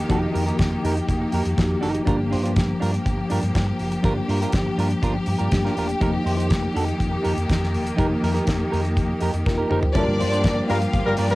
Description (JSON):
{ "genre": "disco", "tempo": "122 BPM", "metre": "4/4", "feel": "straight", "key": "G minor", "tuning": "A4 = 440 Hz", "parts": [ { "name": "tine electric piano", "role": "accompaniment", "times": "0.0-11.4 s", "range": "F3 to C5", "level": "-26 LUFS", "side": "left 1 dB", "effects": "medium stereo tremolo, cassette tape" }, { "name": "clear studio string section", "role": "sustained chords", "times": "0.0-11.4 s", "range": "Eb3 to G4", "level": "-28 LUFS", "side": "left 1 dB", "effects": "cassette tape" }, { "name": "semi-hollow electric guitar", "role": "accompaniment", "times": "0.1-11.3 s", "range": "D4 to C5", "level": "-28 LUFS", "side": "right 3 dB", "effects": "cassette tape" }, { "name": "fingered electric bass", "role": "bass", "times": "0.1-11.3 s", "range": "E1 to G2", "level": "-25 LUFS", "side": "equal", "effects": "none" }, { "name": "damped 70s drum kit", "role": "drums", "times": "0.1-11.4 s", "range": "hi-hat, kick drum, snare drum, toms", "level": "-25 LUFS", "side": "equal", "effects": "cassette tape" }, { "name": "warm studio string section", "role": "second line", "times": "9.9-11.4 s", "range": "D4 to F5", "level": "-26 LUFS", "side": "left 2 dB", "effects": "cassette tape, analog delay" }, { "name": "warm horn section", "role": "stabs", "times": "10.7-11.4 s", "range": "G3 to Bb4", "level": "-23 LUFS", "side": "left 1 dB", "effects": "cassette tape" } ], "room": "moderate booth ambience, RT60 0.2 s", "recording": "home recording on cassette", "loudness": "-19 LUFS", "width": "side -19 dB against mid", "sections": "0.0-9.9 A section; 9.9-11.4 B section", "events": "drum fill 9.5-9.9", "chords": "0.0 F9sus4; 2.1 Gm7; 6.0 F9sus4; 9.9 Gm7", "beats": "| 0.09 0.58 1.08 1.57 | 2.06 2.56 3.05 3.54 | 4.04 4.53 5.02 5.51 | 6.01 6.50 6.99 7.49 | 7.98 8.47 8.96 9.46 | 9.95 10.44 10.93" }